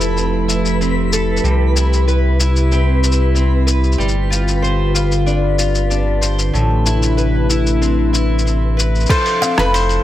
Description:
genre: folktronica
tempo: 94 BPM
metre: 4/4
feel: straight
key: F lydian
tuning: A4 = 440 Hz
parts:
  - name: warbly tape-like pad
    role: sustained chords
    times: 0.0-9.1 s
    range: C3 to B4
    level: -22 LUFS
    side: equal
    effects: chorus, built-in reverb, plate reverb
  - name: fingerpicked twelve-string acoustic guitar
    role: arpeggios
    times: 0.0-10.0 s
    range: A2 to C5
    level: -20 LUFS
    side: left 1 dB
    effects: digital delay, plate reverb
  - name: warm sub bass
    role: bass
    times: 0.0-10.0 s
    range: F1 to C2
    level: -16 LUFS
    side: equal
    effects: none
  - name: lo-fi sampler-style drum kit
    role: drums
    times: 0.0-10.0 s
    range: cabasa, crash cymbal, hi-hat, rim click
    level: -21 LUFS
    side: left 2 dB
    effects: overdrive
  - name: twinkling granular texture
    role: texture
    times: 0.0-9.1 s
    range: B4 to B5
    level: -28 LUFS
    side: right 1 dB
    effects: built-in reverb, plate reverb
  - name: mandolin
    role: melody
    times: 9.1-10.0 s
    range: B4 to C5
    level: -17 LUFS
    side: equal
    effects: plate reverb
  - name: electronic kick drum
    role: drums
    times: 9.1-9.2 s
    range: none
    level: -16 LUFS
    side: equal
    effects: none
  - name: buzzing kalimba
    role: second line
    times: 9.4-9.6 s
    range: F5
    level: -22 LUFS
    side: left 3 dB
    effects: plate reverb
room: light reverb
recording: none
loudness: -13 LUFS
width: side -13 dB against mid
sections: 0.0-9.1 A section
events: filter sweep on ambient pad 0.0-9.1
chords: 0.0 Fmaj9; 1.4 Cmaj7; 4.0 G7sus4; 6.5 Am11; 9.1 Fmaj7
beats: 0.16 0.80 | 1.43 2.07 2.71 3.35 | 3.99 4.62 5.26 5.90 | 6.54 7.18 7.82 8.46 | 9.09 9.73

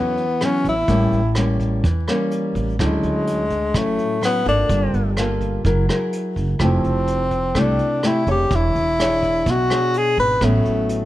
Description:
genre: bossa nova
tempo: 126 BPM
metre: 4/4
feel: straight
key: A major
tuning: A4 = 440 Hz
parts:
  - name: breathy tenor saxophone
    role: melody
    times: 0.0-11.1 s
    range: G#3 to B4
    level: -20 LUFS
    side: left 1 dB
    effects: none
  - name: nylon-string guitar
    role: accompaniment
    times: 0.0-11.1 s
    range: A2 to C#5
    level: -22 LUFS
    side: left 1 dB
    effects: none
  - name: upright bass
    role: bass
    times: 0.0-11.1 s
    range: E1 to E2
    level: -22 LUFS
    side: right 1 dB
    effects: none
  - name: vintage brush drum kit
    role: drums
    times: 0.2-11.0 s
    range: hi-hat, kick drum, rim click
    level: -26 LUFS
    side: right 1 dB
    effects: none
room: little or no reverb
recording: none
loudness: -17 LUFS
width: side -15 dB against mid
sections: 0.0-11.1 A section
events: none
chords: 0.0 A69; 0.9 A7b9; 2.8 Dmaj9; 4.7 Gm9; 5.7 F#9; 6.6 Fmaj9; 8.5 E13; 10.4 A69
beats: 0.41 | 0.89 1.36 1.84 2.32 | 2.79 3.27 3.75 4.22 | 4.70 5.17 5.65 6.13 | 6.60 7.08 7.56 8.03 | 8.51 8.98 9.46 9.94 | 10.41 10.89

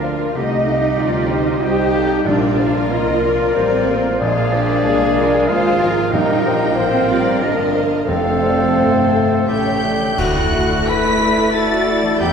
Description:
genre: cinematic, emotional film score for orchestra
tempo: 93 BPM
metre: 3/4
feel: rubato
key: Bb major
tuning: A4 = 439 Hz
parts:
  - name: warm symphonic violin section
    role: melody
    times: 0.0-12.3 s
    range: D5 to B6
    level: -25 LUFS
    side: left 3 dB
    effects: none
  - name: clear oboe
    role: second line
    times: 0.0-12.3 s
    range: F4 to B4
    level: -26 LUFS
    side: right 1 dB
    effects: none
  - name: mellow silver concert flute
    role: second line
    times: 0.0-12.3 s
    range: Eb5 to B5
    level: -25 LUFS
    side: right 1 dB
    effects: none
  - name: rich symphonic violin section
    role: second line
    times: 0.0-12.3 s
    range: A3 to F5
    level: -26 LUFS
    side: left 2 dB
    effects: none
  - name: warm clarinet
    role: second line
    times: 0.0-10.2 s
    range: A4 to G5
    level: -23 LUFS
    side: left 2 dB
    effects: none
  - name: clear symphonic viola section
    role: accompaniment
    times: 0.0-12.3 s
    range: G3 to Bb4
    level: -25 LUFS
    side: right 2 dB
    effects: none
  - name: warm baby grand piano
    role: accompaniment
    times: 0.0-12.3 s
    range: Bb1 to F5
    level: -23 LUFS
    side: left 2 dB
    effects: none
  - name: dark French horn section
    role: sustained chords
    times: 0.0-12.3 s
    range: Eb3 to E4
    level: -23 LUFS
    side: left 2 dB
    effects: none
  - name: concert harp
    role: arpeggios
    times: 0.0-12.3 s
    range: F2 to Eb6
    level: -28 LUFS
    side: left 3 dB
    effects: none
  - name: dark symphonic cello section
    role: bass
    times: 0.0-12.3 s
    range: A3 to G4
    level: -21 LUFS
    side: right 2 dB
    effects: none
  - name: warm symphonic double bass section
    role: bass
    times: 0.0-12.3 s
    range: F1 to E2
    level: -26 LUFS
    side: right 4 dB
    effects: none
  - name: timpani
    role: percussion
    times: 2.3-3.2, 6.1-9.1 s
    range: F2 to Bb2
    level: -29 LUFS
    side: right 1 dB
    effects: none
  - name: cymbal swell, clash cymbals and concert bass drum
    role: percussion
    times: 6.1-11.5 s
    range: none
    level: -30 LUFS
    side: equal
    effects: none
room: wet scoring stage reverb, RT60 1.8 s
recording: heard from further back in the room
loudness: -14 LUFS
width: side -6 dB against mid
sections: 0.0-10.2 A section; 10.2-12.3 B section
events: band accent 10.2-10.9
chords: 0.3 Cm; 2.3 Bb; 4.2 Bb7; 6.1 Ebsus2; 8.1 Fadd9; 9.5 A7; 10.2 Dadd9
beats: | 0.35 0.99 1.64 | 2.27 2.92 3.56 | 4.21 4.84 5.48 | 6.12 6.77 7.41 | 8.07 8.74 9.47 | 10.19 10.88 11.55 | 12.20

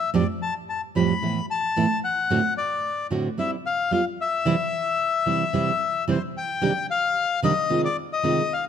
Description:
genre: tango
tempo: 111 BPM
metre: 4/4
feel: rubato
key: C major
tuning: A4 = 440 Hz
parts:
  - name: bandoneon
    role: melody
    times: 0.0-8.6 s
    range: C5 to B5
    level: -24 LUFS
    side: left 5 dB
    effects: none
  - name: nylon-string guitar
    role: accompaniment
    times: 0.1-8.4 s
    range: F2 to G4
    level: -25 LUFS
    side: right 4 dB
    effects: none
room: light reverb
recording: close, detailed microphones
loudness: -21 LUFS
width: side -8 dB against mid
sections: 0.0-6.6 A section; 6.6-8.7 B section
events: none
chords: 0.1 Fadd9; 1.2 Asus2; 2.3 D7/A; 3.4 C/G; 3.9 G7; 4.5 C; 6.6 Cmadd9; 7.7 Ab6/C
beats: | 0.14 0.68 1.22 1.76 | 2.30 2.83 3.37 3.91 | 4.45 4.99 5.53 6.07 | 6.62 7.16 7.70 8.24

